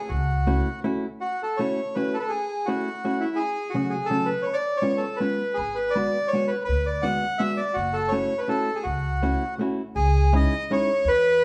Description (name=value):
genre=musette waltz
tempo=165 BPM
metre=3/4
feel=swing 55% on 8ths, rubato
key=F# minor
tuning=A4 = 437 Hz
part: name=bandoneon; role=melody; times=0.0-11.4 s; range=E4 to F#5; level=-27 LUFS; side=equal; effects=none
part: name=upright bass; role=bass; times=0.1-0.6, 5.6-11.4 s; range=F#1 to E2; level=-27 LUFS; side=equal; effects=none
part: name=hollow-body jazz guitar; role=accompaniment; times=0.5-10.9 s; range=C#3 to F#4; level=-30 LUFS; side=equal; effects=none
room=moderate large studio reverb, RT60 1.0 s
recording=band playing live in one room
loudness=-25 LUFS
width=mono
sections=0.0-1.2 A section; 1.2-10.0 A section; 10.0-11.4 B section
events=none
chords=0.0 F#m7; 3.4 F#m; 4.5 C#7; 5.6 G#m7b5; 7.8 F#m7; 10.0 C#madd9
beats=| 0.11 0.47 0.85 | 1.22 1.59 1.96 | 2.32 2.68 3.04 | 3.40 3.76 4.12 | 4.49 4.85 5.22 | 5.59 5.96 6.33 | 6.69 7.05 7.41 | 7.78 8.13 8.50 | 8.86 9.23 9.60 | 9.97 10.33 10.70 | 11.06 11.42